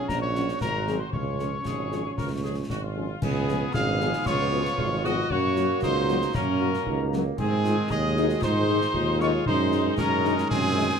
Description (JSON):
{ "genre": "military-style march for wind band", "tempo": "115 BPM", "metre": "2/4", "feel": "straight", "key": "Db major", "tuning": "A4 = 442 Hz", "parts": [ { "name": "clear cornet", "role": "melody", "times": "0.0-11.0 s", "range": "Ab4 to F5", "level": "-33 LUFS", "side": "right 2 dB", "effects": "none" }, { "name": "mellow hollow piccolo", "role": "second line", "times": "0.0-11.0 s", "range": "Ab5 to F6", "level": "-32 LUFS", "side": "left 4 dB", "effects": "none" }, { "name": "warm woodwind section", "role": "second line", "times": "0.0-11.0 s", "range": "Cb4 to Db5", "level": "-32 LUFS", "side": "left 4 dB", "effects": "none" }, { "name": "bright trombone section", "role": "sustained chords", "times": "0.0-11.0 s", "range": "Eb3 to Db4", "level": "-33 LUFS", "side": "right 3 dB", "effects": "none" }, { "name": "clear tuba", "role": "bass", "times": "0.1-10.9 s", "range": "Ab1 to Ab2", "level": "-27 LUFS", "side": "right 3 dB", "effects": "none" }, { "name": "concert snare drum, concert bass drum and clash cymbals", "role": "drums", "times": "0.1-11.0 s", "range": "none", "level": "-33 LUFS", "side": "left 2 dB", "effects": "none" }, { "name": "warm French horn section", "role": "accompaniment", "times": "0.4-10.9 s", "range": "Eb3 to Ab4", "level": "-31 LUFS", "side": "left 6 dB", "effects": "none" }, { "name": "dark euphonium", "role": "second line", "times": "3.7-10.7 s", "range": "C4 to Ab4", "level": "-32 LUFS", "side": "right 1 dB", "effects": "none" } ], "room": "moderate studio reverb, RT60 0.9 s", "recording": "none", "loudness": "-23 LUFS", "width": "side -6 dB against mid", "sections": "0.0-3.2 A section; 3.2-11.0 B section", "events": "none", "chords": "0.1 Gb/Bb; 0.6 Ab7; 1.1 Db; 3.2 Db7; 5.3 Gb; 7.4 Ab; 9.5 Ab7/Gb" }